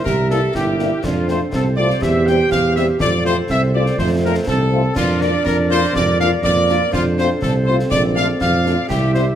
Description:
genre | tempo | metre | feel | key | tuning
military-style march for wind band | 122 BPM | 2/4 | straight | F major | A4 = 439 Hz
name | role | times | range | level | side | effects
clear trumpet section | melody | 0.0-9.2 s | F4 to G5 | -20 LUFS | equal | none
clear woodwind section | second line | 0.0-9.4 s | G4 to E5 | -25 LUFS | left 2 dB | none
mellow euphonium | second line | 0.0-9.4 s | A3 to G4 | -22 LUFS | right 3 dB | none
mellow tuba | bass | 0.1-9.3 s | G1 to F2 | -19 LUFS | right 2 dB | none
concert snare drum, concert bass drum and clash cymbals | drums | 0.1-9.3 s | none | -27 LUFS | left 1 dB | none
mellow French horn section | accompaniment | 0.3-9.2 s | G3 to G4 | -25 LUFS | left 6 dB | none
room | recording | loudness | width
moderate recital hall reverb, RT60 1.6 s | none | -14 LUFS | side -10 dB against mid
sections
0.0-9.4 A section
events
none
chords
0.0 C7; 1.0 F; 2.0 C/E; 3.0 F; 5.0 Bb/F; 6.9 F; 7.9 Bbmaj7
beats
| 0.06 0.55 | 1.04 1.53 | 2.02 2.51 | 3.00 3.50 | 3.99 4.48 | 4.97 5.46 | 5.95 6.44 | 6.93 7.42 | 7.91 8.40 | 8.89

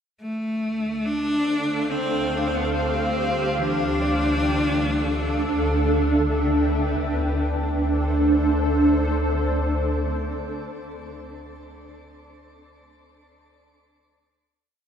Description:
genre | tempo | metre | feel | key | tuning
ambient | free time | none | none | D minor | A4 = 439 Hz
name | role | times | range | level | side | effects
clear cello | melody | 0.2-6.1 s | A3 to D4 | -25 LUFS | equal | shimmer reverb, tape echo
granular cloud pad | sustained chords | 1.4-10.9 s | D4 to F5 | -23 LUFS | right 1 dB | built-in reverb, analog chorus, shimmer reverb
deep rumbling drone | bass | 2.2-9.5 s | D2 | -26 LUFS | equal | built-in reverb
organ-like drone | drone | 0.8-10.7 s | D3 to A3 | -36 LUFS | right 1 dB | ensemble chorus, built-in reverb
Celtic harp | arpeggios | 3.6-10.7 s | E3 to D5 | -36 LUFS | left 4 dB | none
room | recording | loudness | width
wet lush hall reverb, RT60 2.5 s | dreamy mix soaked in reverb | -20 LUFS | side -8 dB against mid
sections
0.2-7.0 A section; 7.0-10.3 final chord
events
fade-in on synth drone 0.2-7.0; fade-out on harp 0.2-7.0; fade-out on synth drone 0.2-7.0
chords
0.2 Dm7; 1.9 G7sus4/D; 3.6 Dm7; 5.3 G69/D; 7.0 D5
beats
free time

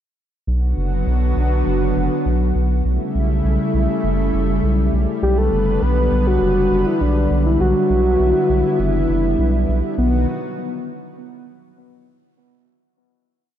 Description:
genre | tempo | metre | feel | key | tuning
synthwave | 101 BPM | 4/4 | straight | B minor | A4 = 440 Hz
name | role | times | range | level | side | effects
lush unison pad | sustained chords | 0.5-10.3 s | C#3 to B4 | -21 LUFS | equal | chorus
round analog bass | bass | 0.5-10.3 s | F#1 to B1 | -18 LUFS | equal | none
soft octave-layered synth lead | melody | 5.2-10.3 s | B3 to B4 | -19 LUFS | left 1 dB | chorus, ping-pong delay
room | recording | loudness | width
moderate lush hall reverb, RT60 2.4 s | big arena sound | -16 LUFS | side -10 dB against mid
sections
0.5-10.0 verse; 10.0-12.4 final chord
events
none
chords
0.5 Bm; 2.9 A7/B; 5.2 G; 7.6 Em7/B; 10.0 B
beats
| 0.47 1.07 1.66 2.26 | 2.85 3.45 4.04 4.63 | 5.23 5.82 6.42 7.01 | 7.60 8.20 8.79 9.39 | 9.98

